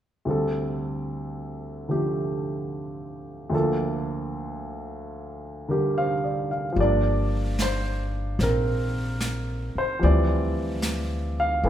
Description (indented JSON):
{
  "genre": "jazz ballad",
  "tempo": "74 BPM",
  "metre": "4/4",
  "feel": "swing 67% on 8ths",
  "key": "G minor",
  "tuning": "A4 = 440 Hz",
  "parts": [
    { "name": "warm baby grand piano", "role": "accompaniment", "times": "0.3-11.7 s", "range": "D2 to F5", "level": "-26 LUFS", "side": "right 1 dB", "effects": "none" },
    { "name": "upright bass", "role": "bass", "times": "6.8-11.7 s", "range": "G1 to D2", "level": "-25 LUFS", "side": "equal", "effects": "none" },
    { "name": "jazz brush drum kit", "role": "drums", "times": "6.8-11.7 s", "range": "brushed snare drum, hi-hat, snare drum", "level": "-32 LUFS", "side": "right 2 dB", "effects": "none" }
  ],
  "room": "moderate recital hall reverb, RT60 1.6 s",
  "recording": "recorded in a church or concert hall",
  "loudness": "-23 LUFS",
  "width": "side -11 dB against mid",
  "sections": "0.3-6.8 A section; 6.8-11.7 B section",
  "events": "none",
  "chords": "0.3 D7sus4; 3.5 Gm7/D; 6.8 Gm7; 10.0 Dm11"
}